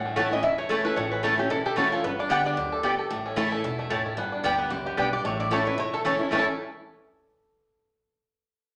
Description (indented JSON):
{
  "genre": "bluegrass",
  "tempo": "225 BPM",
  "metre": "4/4",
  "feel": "swing 55% on 8ths",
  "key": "A mixolydian",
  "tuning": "A4 = 440 Hz",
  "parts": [
    { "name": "picked steel-string acoustic guitar", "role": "accompaniment", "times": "0.0-6.4 s", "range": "E2 to G4", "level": "-33 LUFS", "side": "equal", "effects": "none" },
    { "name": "bluegrass banjo", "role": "arpeggios", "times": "0.0-6.5 s", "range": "E3 to A4", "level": "-33 LUFS", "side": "equal", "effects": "none" },
    { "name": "upright bass", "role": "bass", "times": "0.0-6.4 s", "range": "E1 to D2", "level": "-44 LUFS", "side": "equal", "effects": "none" },
    { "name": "lap resonator guitar", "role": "melody", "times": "0.2-6.5 s", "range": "F4 to F#5", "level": "-31 LUFS", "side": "equal", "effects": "none" },
    { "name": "mandolin", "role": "stabs", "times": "0.2-6.4 s", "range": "A3 to A5", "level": "-30 LUFS", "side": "equal", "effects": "none" }
  ],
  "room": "wet large studio reverb, RT60 0.9 s",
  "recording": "none",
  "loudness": "-26 LUFS",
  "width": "mono",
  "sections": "0.0-4.2 A section; 4.2-6.3 B section; 6.3-7.4 C section",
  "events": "none",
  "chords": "0.0 A; 2.0 G; 3.1 A; 4.2 G; 5.2 A"
}